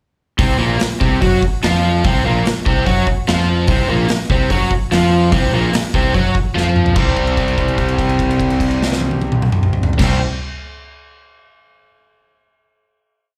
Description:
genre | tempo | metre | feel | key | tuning
blues rock power trio and southern rock | 146 BPM | 4/4 | straight | unclear | A4 = 438 Hz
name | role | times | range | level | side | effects
overdriven electric guitar | riff | 0.4-10.2 s | A#2 to F#4 | -20 LUFS | equal | none
fuzz fingered electric bass | bass | 0.4-10.2 s | A#1 to F#2 | -21 LUFS | equal | overdrive
big rock drum kit | drums | 0.4-10.1 s | crash cymbal, hi-hat, kick drum, snare drum, toms | -21 LUFS | equal | none
room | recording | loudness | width
light reverb | live gig heard through the venue's PA, club reverb | -16 LUFS | mono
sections
0.4-7.0 riff; 7.0-10.2 final chord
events
drum fill 6.6-7.0; held note 7.0-10.0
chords
0.4 F#maj7#11/A#; 7.0 C5

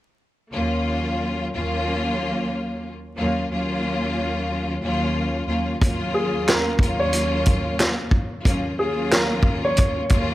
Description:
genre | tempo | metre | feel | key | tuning
hip hop, boom-bap hip-hop | 91 BPM | 4/4 | swing 60% on 16ths | Eb minor | A4 = 441 Hz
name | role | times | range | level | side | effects
clear studio string section | accompaniment | 0.5-10.3 s | Eb2 to F4 | -23 LUFS | equal | none
vintage drum kit | drums | 5.8-10.3 s | handclaps, hi-hat, kick drum, snare drum | -20 LUFS | equal | none
warm upright piano | melody | 6.1-10.3 s | Ab4 to Db5 | -24 LUFS | equal | tape echo
room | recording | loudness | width
small room reverb | vinyl crackle | -20 LUFS | side -16 dB against mid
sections
0.5-5.8 A section; 5.8-10.3 B section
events
none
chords
0.5 Ebm7

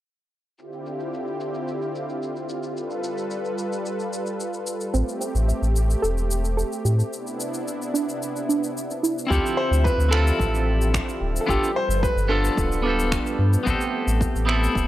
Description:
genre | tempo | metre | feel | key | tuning
sunset chillout | 110 BPM | 4/4 | straight | D dorian | A4 = 440 Hz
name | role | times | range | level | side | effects
lush unison pad | sustained chords | 0.6-14.9 s | C3 to E5 | -29 LUFS | equal | chorus
electronic shaker and finger snaps | drums | 0.6-14.9 s | none | -32 LUFS | left 1 dB | overdrive, low-pass filter on perc, low-pass filter on snare, low-pass filter on room
soft round pluck | arpeggios | 4.9-9.3 s | C4 to E5 | -28 LUFS | right 4 dB | chorus, analog delay
warm sub bass | bass | 4.9-14.9 s | D1 to A2 | -21 LUFS | equal | none
clear concert grand piano | melody | 9.3-13.1 s | G4 to C5 | -26 LUFS | equal | analog delay
clean electric guitar | accompaniment | 9.3-14.9 s | B3 to A4 | -25 LUFS | equal | auto-pan, analog delay
electronic kick drum | drums | 9.3-14.9 s | none | -27 LUFS | equal | overdrive
room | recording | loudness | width
light reverb | dry, gritty hardware recording | -21 LUFS | side -14 dB against mid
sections
0.6-9.3 A section; 9.3-14.9 B section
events
break 7.1-9.3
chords
0.6 Dm11; 2.8 G9; 4.9 Am7; 7.1 Cmaj9; 9.3 Dm11; 11.5 G9; 13.7 Am7

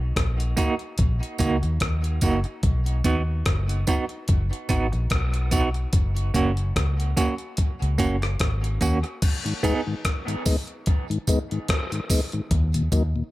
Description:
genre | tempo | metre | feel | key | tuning
dub reggae | 73 BPM | 4/4 | swing 56% on 16ths | G# minor | A4 = 445 Hz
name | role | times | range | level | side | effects
vintage muted fingered electric bass | bass | 0.0-13.1 s | F#1 to D#2 | -24 LUFS | equal | none
breakbeat sampler-style drum kit | drums | 0.2-13.1 s | crash cymbal, hi-hat, kick drum, rim click | -24 LUFS | equal | none
semi-hollow electric guitar | accompaniment | 0.6-9.8 s | A#3 to G#4 | -28 LUFS | right 4 dB | tremolo, dub echo
tambourine | percussion | 0.6-13.1 s | none | -34 LUFS | right 5 dB | dub echo
mellow tonewheel organ | accompaniment | 9.5-13.2 s | D#2 to D#4 | -27 LUFS | left 3 dB | slow rotary speaker
room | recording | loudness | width
light reverb | none | -21 LUFS | side -17 dB against mid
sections
0.0-9.2 A section; 9.2-13.3 B section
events
none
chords
0.0 D#m; 2.6 B; 5.9 F#; 9.2 G#m; 12.5 D#m

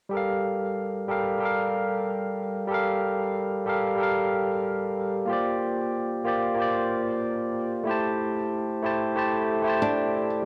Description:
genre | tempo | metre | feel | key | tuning
chillout | 93 BPM | 4/4 | straight | G dorian | A4 = 440 Hz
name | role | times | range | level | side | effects
barky tine electric piano | accompaniment | 0.1-10.5 s | G3 to A5 | -27 LUFS | equal | cassette tape, tape echo
flamenco guitar | melody | 9.8-10.5 s | D4 | -29 LUFS | equal | cassette tape
room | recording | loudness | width
wet spring reverb, RT60 1.5 s, small room ambience | home recording on cassette | -27 LUFS | mono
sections
0.1-10.5 A section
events
none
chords
0.1 Gm7; 5.3 Bb69; 7.9 Am7

